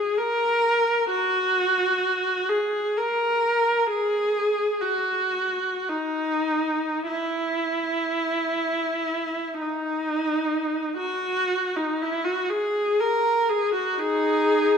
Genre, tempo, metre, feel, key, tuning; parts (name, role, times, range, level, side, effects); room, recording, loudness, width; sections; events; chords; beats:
classical, free, expressive piece for unaccompanied viola; 36-67 BPM; 3/4; rubato; F# mixolydian; A4 = 440 Hz
rich viola; solo; 0.0-14.8 s; D#4 to A#4; -22 LUFS; equal
wet scoring stage reverb, RT60 1.8 s; minimal, uncompressed stereo recording; -22 LUFS; side -6 dB against mid
0.0-11.0 A section; 11.0-14.8 A section
0.18 | 1.10 2.03 2.98 | 3.92 4.84 5.90 | 7.08 8.37 9.61 | 10.97 12.02 13.02 | 14.01